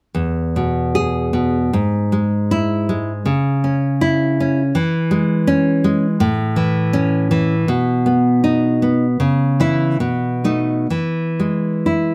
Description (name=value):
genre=romantic piece for solo classical guitar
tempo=62-84 BPM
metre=2/4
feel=rubato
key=E major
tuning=A4 = 440 Hz
part: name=nylon-string guitar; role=solo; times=0.1-12.1 s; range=E2 to G#4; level=-18 LUFS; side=equal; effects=none
room=light reverb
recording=none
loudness=-18 LUFS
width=mono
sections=0.2-12.1 A section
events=none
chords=0.2 E; 1.7 E/G#; 3.3 C#m; 4.8 C#m/E; 6.2 A; 7.7 B; 9.2 C#m; 10.0 B7; 10.9 E